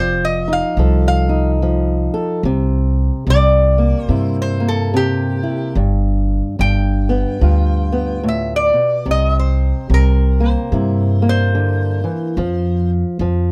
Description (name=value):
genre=acoustic country blues, solo or duo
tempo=72 BPM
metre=4/4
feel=swing 60% on 8ths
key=C mixolydian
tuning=A4 = 442 Hz
part: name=lap resonator guitar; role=melody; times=0.0-12.9 s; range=G4 to G5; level=-22 LUFS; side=equal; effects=none
part: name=fingerpicked old ladder-braced acoustic guitar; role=accompaniment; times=0.0-13.5 s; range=G2 to A4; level=-22 LUFS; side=equal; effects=none
part: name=upright bass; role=bass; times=0.0-13.5 s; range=F1 to G2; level=-18 LUFS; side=equal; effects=none
room=little or no reverb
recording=close, detailed microphones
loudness=-16 LUFS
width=mono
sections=0.0-9.1 A section; 9.1-13.5 B section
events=resonator guitar played with a steel bar solo 9.1-13.5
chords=0.0 F7; 2.4 C7; 5.8 G7; 9.1 C7; 12.4 F5